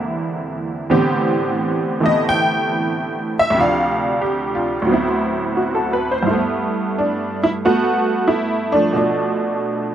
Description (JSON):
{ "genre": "solo jazz", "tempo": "90 BPM", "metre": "4/4", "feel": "swing 68% on 8ths, rubato", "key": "G major from 6.3 s", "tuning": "A4 = 440 Hz", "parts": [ { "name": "honky-tonk upright piano", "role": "solo", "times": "0.0-9.9 s", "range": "D2 to G5", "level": "-16 LUFS", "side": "right 1 dB", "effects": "none" } ], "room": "light reverb", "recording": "close, detailed microphones", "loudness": "-16 LUFS", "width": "side -10 dB against mid", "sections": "0.0-6.3 A section; 6.3-9.9 B section", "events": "honky-tonk piano solo 0.0-6.3", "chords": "0.0 E7alt; 0.9 Am11; 3.6 Dm7; 4.9 D13; 6.3 G69; 9.0 Bm7b5" }